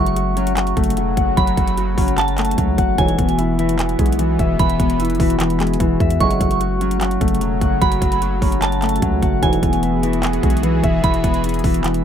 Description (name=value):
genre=hip hop, trap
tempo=149 BPM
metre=4/4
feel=half-time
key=F# minor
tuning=A4 = 440 Hz
part: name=soft synth bell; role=second line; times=0.0-12.0 s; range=G#5 to C#6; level=-25 LUFS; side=right 5 dB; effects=chorus, tape echo
part: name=mellow electric guitar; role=accompaniment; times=0.0-12.0 s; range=E3 to E4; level=-22 LUFS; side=left 1 dB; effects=none
part: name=sweeping resonant pad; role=sustained chords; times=0.0-12.0 s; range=C#3 to G#4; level=-28 LUFS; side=right 1 dB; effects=chorus
part: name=Celtic harp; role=arpeggios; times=0.0-12.0 s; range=E3 to F#5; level=-22 LUFS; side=left 4 dB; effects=tape echo
part: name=dark brass ensemble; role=stabs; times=0.0, 3.0-3.3, 6.2-6.5, 9.4-9.7 s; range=B1 to G#3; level=-24 LUFS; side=right 7 dB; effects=none
part: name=long sustained 808-style bass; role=bass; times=0.0-12.0 s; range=E1 to E2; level=-22 LUFS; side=right 1 dB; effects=none
part: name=trap drum kit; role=drums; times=0.1-12.0 s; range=handclaps, hi-hat, kick drum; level=-20 LUFS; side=right 1 dB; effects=none
room=light reverb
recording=none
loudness=-15 LUFS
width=side -9 dB against mid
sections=0.0-12.0 A section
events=none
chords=0.0 F#m; 3.0 Eadd9; 6.2 F#m; 9.4 Eadd9